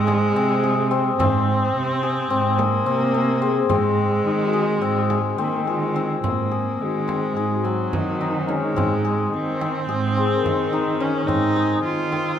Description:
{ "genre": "contemporary instrumental, chamber music in an uneven meter", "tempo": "214 BPM (eighths)", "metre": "9/8", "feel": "straight", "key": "Ab mixolydian", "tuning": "A4 = 440 Hz", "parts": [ { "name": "warm viola", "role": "second line", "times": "0.0-12.4 s", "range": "Gb3 to F4", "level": "-24 LUFS", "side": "right 2 dB", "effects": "none" }, { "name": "hammered dulcimer", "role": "arpeggios", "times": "0.0-12.4 s", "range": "C4 to Ab4", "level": "-23 LUFS", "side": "left 5 dB", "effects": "none" }, { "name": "muted cello", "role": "bass", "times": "0.0-12.4 s", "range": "Ab2 to Eb3", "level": "-25 LUFS", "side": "right 4 dB", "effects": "none" }, { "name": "frame drum", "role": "percussion", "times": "0.1-12.4 s", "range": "none", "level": "-30 LUFS", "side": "right 3 dB", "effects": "none" }, { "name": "large celesta", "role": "texture", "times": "0.9-12.4 s", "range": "Eb4 to C5", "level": "-29 LUFS", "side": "left 8 dB", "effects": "none" } ], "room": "wet recital hall reverb, RT60 1.7 s", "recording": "none", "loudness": "-19 LUFS", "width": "side -9 dB against mid", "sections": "0.0-6.2 A section; 6.2-12.4 B section", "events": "none", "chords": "0.0 Fm/Ab (rootless); 3.7 Ab; 6.2 Ab7" }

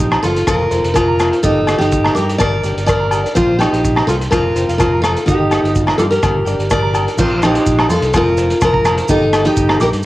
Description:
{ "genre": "highlife guitar band", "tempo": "125 BPM", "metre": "4/4", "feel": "straight", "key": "Bb major", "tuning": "A4 = 437 Hz", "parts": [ { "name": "picked steel-string acoustic guitar", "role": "melody", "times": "0.0-9.9 s", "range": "Eb4 to D5", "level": "-15 LUFS", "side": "equal", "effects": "tape echo" }, { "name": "fingered electric bass", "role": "bass", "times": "0.0-10.0 s", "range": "F1 to G2", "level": "-20 LUFS", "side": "equal", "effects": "none" }, { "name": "clean electric guitar", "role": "arpeggios", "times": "0.1-9.9 s", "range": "C5 to D6", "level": "-24 LUFS", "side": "right 3 dB", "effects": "cassette tape" }, { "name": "crunchy breakbeat drum kit", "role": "drums", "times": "0.1-10.0 s", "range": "crash cymbal, hi-hat, kick drum, rim click", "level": "-20 LUFS", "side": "equal", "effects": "cassette tape" }, { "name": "agogo bells", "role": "percussion", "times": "0.1-9.8 s", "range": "none", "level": "-22 LUFS", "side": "left 3 dB", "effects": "none" }, { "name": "flamenco guitar", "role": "accompaniment", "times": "0.2-10.0 s", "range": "Eb3 to G4", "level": "-25 LUFS", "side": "left 3 dB", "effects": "cassette tape" }, { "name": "maracas", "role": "percussion", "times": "0.2-9.9 s", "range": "none", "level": "-31 LUFS", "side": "right 4 dB", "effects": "none" } ], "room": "light reverb, small room ambience", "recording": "home recording on cassette", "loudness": "-12 LUFS", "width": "side -17 dB against mid", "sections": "0.0-7.2 A section; 7.2-10.1 B section", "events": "none", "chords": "0.5 Fsus4; 1.4 Eb/G; 2.4 Gm; 3.4 Bbsus2; 4.3 Fsus4; 5.3 Eb/G; 6.2 Gm; 7.2 Bbsus2; 8.1 Fsus4; 9.1 Eb/G" }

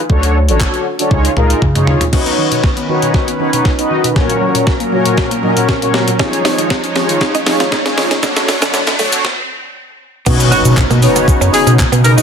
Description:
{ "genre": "dance-pop", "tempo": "118 BPM", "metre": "4/4", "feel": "straight", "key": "unclear", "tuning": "A4 = 439 Hz", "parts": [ { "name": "mellow synth brass", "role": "accompaniment", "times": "0.1-12.2 s", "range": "A#2 to D#5", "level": "-16 LUFS", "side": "left 1 dB", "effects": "chorus, sidechain pumping" }, { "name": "round analog bass", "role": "bass", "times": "0.1-2.0, 10.3-12.2 s", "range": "A1 to C#3", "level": "-12 LUFS", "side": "equal", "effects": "sidechain pumping" }, { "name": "clean 12-bit digital drum machine", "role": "drums", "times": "0.1-12.2 s", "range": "crash cymbal, handclaps, hi-hat, kick drum, shaker, snare drum, toms", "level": "-15 LUFS", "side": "equal", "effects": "soft clipping on snare" }, { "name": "soft supersaw", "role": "sustained chords", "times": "2.1-12.2 s", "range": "A#2 to C#5", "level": "-19 LUFS", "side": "right 1 dB", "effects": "sidechain pumping" }, { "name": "mallet-like synth pluck", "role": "arpeggios", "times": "2.1-9.2 s", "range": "A#2 to D#4", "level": "-24 LUFS", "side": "left 2 dB", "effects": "chorus, phaser, sidechain pumping, ping-pong delay" }, { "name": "riser and impact", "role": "sound effects", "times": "4.8-12.2 s", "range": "none", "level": "-24 LUFS", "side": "equal", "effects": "none" }, { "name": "direct-recorded clean electric guitar", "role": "riff", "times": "6.2-12.2 s", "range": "A3 to E#4", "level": "-21 LUFS", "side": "right 5 dB", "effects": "wide subtle chorus" }, { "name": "warm horn section", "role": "melody", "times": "10.5-12.1 s", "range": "F#4 to A#4", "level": "-16 LUFS", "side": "left 1 dB", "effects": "sidechain pumping, ping-pong delay" } ], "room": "light reverb", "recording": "dense, heavily limited modern master, high-pass filter", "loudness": "-11 LUFS", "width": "side -7 dB against mid", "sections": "0.0-2.1 A section; 2.1-10.3 B section; 10.3-12.2 C section", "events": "drum fill 1.1-2.1, 2.1-9.2; build-up 2.1-10.3; filter sweep 2.1-10.3; riser 4.8-10.3; stop 9.2-10.3; drop 10.3-12.2; impact 10.3-12.2", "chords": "0.1 Dmaj7; 1.1 C#add9; 2.1 Badd9; 4.2 F#/A#; 6.2 C#add9; 8.2 Dmaj7; 10.3 Badd9" }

